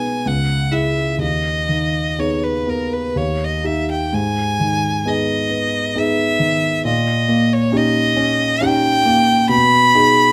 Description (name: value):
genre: classical, romantic duo for violin and grand piano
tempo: 60-69 BPM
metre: 3/4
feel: rubato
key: G# minor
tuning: A4 = 440 Hz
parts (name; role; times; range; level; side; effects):
- clear violin; melody; 0.0-10.3 s; A#4 to B5; -20 LUFS; equal; none
- warm concert grand piano; accompaniment; 0.0-10.3 s; C#2 to G#4; -20 LUFS; equal; none
room: moderate stone room reverb, RT60 1.2 s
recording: close, detailed microphones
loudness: -17 LUFS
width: mono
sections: 0.0-10.3 A section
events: none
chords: 0.3 C#madd11; 1.2 G#m/D#; 3.2 D#; 4.1 G#m; 6.9 D#7/A#; 9.5 G#m/B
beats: 0.26 | 1.20 2.19 3.16 | 4.13 5.06 5.97 | 6.86 7.75 8.63 | 9.51